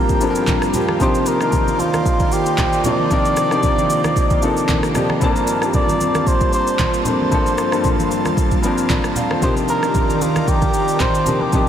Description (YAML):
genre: amapiano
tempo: 114 BPM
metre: 4/4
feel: swing 55% on 16ths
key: unclear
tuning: A4 = 440 Hz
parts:
  - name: trumpet with cup mute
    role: melody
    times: 0.0-11.7 s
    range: F4 to D5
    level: -21 LUFS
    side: equal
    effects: analog delay
  - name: warm baby grand piano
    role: accompaniment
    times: 0.0-11.7 s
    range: G2 to Bb5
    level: -21 LUFS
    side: left 3 dB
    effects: none
  - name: airy breathy pad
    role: sustained chords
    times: 0.0-11.7 s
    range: Eb3 to A5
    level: -22 LUFS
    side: right 2 dB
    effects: chorus
  - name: afro-pop drum kit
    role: drums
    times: 0.1-11.7 s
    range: handclaps, kick drum, rim click, shaker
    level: -20 LUFS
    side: equal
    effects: none
  - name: congas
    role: percussion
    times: 0.1-11.7 s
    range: none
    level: -26 LUFS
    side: right 2 dB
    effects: none
room: wet huge ambient reverb, RT60 8.9 s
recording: dreamy mix soaked in reverb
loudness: -15 LUFS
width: side -9 dB against mid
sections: 0.0-11.7 A section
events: grand piano fill 8.6-9.4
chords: 0.0 Gm11; 1.0 Cm11; 5.2 Gm11; 9.4 Cm11